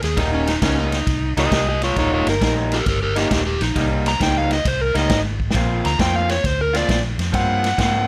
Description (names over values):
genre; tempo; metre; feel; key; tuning
electric blues shuffle; 134 BPM; 4/4; swing 67% on 8ths; Eb mixolydian; A4 = 440 Hz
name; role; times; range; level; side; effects
overdriven slide guitar; second line; 0.0-3.9 s; Db4 to Bb4; -26 LUFS; equal; none
vintage muted fingered electric bass; bass; 0.0-8.1 s; Eb1 to Ab2; -25 LUFS; equal; none
vintage drum kit; drums; 0.0-7.9 s; kick drum, ride cymbal, snare drum; -25 LUFS; equal; none
electric guitar through a small old amp; riff; 0.2-8.1 s; Eb3 to F4; -25 LUFS; equal; none
overdriven electric guitar; melody; 1.4-8.1 s; F4 to Bb5; -23 LUFS; equal; none
room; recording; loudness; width
light reverb; none; -19 LUFS; mono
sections
0.0-8.1 A section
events
drum fill 5.3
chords
0.2 Eb7; 5.5 Bbadd9